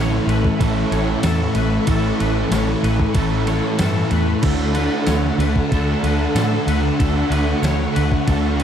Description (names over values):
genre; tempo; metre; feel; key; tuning
rock, shoegaze and dream pop; 94 BPM; 4/4; straight; A major; A4 = 440 Hz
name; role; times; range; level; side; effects
string machine, violas; sustained chords; 0.0-8.6 s; A4 to C#6; -27 LUFS; equal; ensemble chorus
twangy electric guitar; arpeggios; 0.0-8.6 s; A4 to C#5; -30 LUFS; left 2 dB; ensemble chorus, diffuse ambient delay
overdriven semi-hollow guitar; riff; 0.0-8.6 s; A2 to F#4; -23 LUFS; right 8 dB; reverse reverb
thick fuzz guitar; riff; 0.0-8.6 s; A2 to D4; -23 LUFS; left 8 dB; distortion, wide subtle chorus
vintage muted fingered electric bass; bass; 0.0-8.6 s; A1 to A2; -21 LUFS; equal; none
gated 80s digital drum machine; drums; 0.3-8.6 s; crash cymbal, kick drum, ride cymbal, snare drum; -24 LUFS; equal; gated reverb, gated reverb snare, overdrive
tambourine; percussion; 1.2-7.8 s; none; -39 LUFS; right 11 dB; none
room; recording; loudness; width
moderate plate reverb, RT60 2.8 s; dreamy mix soaked in reverb; -16 LUFS; side -9 dB against mid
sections
0.0-8.6 A section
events
none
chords
0.0 Aadd9; 4.4 Dadd9